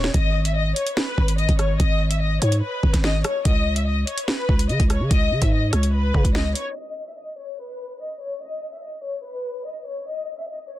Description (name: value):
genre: hip hop, drill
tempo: 145 BPM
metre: 4/4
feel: half-time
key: unclear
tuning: A4 = 440 Hz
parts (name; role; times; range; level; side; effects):
- dark studio violin section; melody; 0.0-10.8 s; B4 to E5; -27 LUFS; left 3 dB; ping-pong delay
- growling 808-style bass; bass; 0.0-6.5 s; D#1 to C#3; -21 LUFS; equal; none
- drill drum kit; drums; 0.0-6.7 s; hi-hat, kick drum, rim click, snare drum; -21 LUFS; equal; none
room: little or no reverb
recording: dense, heavily limited modern master, low-pass filter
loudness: -19 LUFS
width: side -14 dB against mid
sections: 0.0-6.8 A section; 6.8-10.8 B section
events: none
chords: 0.1 G#m; 3.5 C#5; 6.8 N.C.